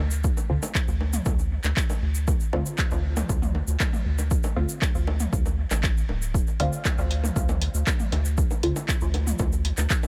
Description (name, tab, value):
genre	dub techno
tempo	118 BPM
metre	4/4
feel	straight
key	D minor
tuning	A4 = 439 Hz
part	round analog bass	bass	0.0-9.9 s	D1 to D2	-28 LUFS	equal	sidechain pumping
part	tube shaker	percussion	0.1-10.1 s	none	-39 LUFS	equal	none
part	electronic kick drum	drums	0.2-10.0 s	none	-28 LUFS	equal	overdrive
part	electronic bongos and toms	percussion	0.4-10.1 s	none	-36 LUFS	equal	sidechain pumping on perc, sidechain pumping on toms, dub echo
part	filtered dub chord stab	stabs	0.5-8.9 s	D3 to F4	-34 LUFS	equal	phaser, sidechain pumping, dub echo
part	soft vintage rhythm box	drums	0.8-10.0 s	handclaps, hi-hat	-34 LUFS	equal	dub echo
room	digital ambience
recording	none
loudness	-25 LUFS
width	mono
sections	0.0-10.1 A section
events	none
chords	0.0 D5